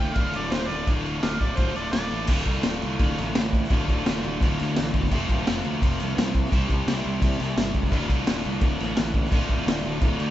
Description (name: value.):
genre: garage rock duo or trio.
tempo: 171 BPM.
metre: 4/4.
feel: straight.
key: D minor.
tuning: A4 = 443 Hz.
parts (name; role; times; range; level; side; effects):
overdriven harmonica; melody; 0.0-2.3 s; A4 to G5; -31 LUFS; right 1 dB; none.
cranked stack guitar; riff; 0.0-10.3 s; D2 to C5; -29 LUFS; equal; overdrive, spring reverb.
fuzz fingered electric bass; bass; 0.0-10.3 s; D1 to D2; -29 LUFS; equal; overdrive, tube saturation.
vintage drum kit; drums; 0.2-10.3 s; crash cymbal, kick drum, snare drum; -24 LUFS; equal; none.
room: light reverb.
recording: band playing live in one room, nothing above 7.9 kHz.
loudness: -22 LUFS.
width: side -13 dB against mid.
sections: 0.0-2.3 A section; 2.3-10.3 B section.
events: none.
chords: 0.0 Dm; 5.1 F; 6.5 C; 7.9 Dm.